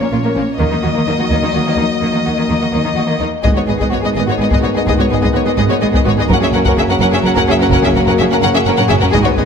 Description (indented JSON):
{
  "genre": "cinematic, epic orchestral film score",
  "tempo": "84 BPM (dotted quarters)",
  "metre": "6/8",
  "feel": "straight",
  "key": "Eb minor, G# minor from 3.4 s",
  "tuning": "A4 = 440 Hz",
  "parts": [
    { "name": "rich chamber violin section", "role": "melody", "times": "0.0-9.4 s", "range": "Db5 to F#5", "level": "-19 LUFS", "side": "left 4 dB", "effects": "none" },
    { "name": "warm chamber violin section", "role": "second line", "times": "0.0-9.4 s", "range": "Bb3 to A#4", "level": "-20 LUFS", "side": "left 3 dB", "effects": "none" },
    { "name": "rich symphonic viola section", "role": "accompaniment", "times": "0.0-9.4 s", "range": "Bb3 to C#4", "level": "-21 LUFS", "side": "right 2 dB", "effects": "none" },
    { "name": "mellow French horn section", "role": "sustained chords", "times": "0.0-9.5 s", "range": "F3 to F#4", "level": "-19 LUFS", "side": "left 4 dB", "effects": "none" },
    { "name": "rich symphonic cello section", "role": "bass", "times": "0.0-9.4 s", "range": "F#2 to Eb3", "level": "-20 LUFS", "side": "right 2 dB", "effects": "none" },
    { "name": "rich symphonic double bass section", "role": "bass", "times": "0.1-9.4 s", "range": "F#1 to Eb2", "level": "-20 LUFS", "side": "right 4 dB", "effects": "none" },
    { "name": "taiko ensemble", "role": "drums", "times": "0.6-9.5 s", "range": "none", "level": "-19 LUFS", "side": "equal", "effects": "none" },
    { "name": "bright trombone section", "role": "sustained chords", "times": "3.4-9.5 s", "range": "C#3 to G#3", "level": "-21 LUFS", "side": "right 4 dB", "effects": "none" }
  ],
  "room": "wet scoring stage reverb, RT60 1.6 s",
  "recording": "none",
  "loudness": "-12 LUFS",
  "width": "side -6 dB against mid",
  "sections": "0.0-3.4 A section; 3.4-9.5 B section",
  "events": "drum fill 8.8-9.1",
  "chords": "0.0 Bbm; 0.6 Ebm; 3.4 G#m; 6.3 F#"
}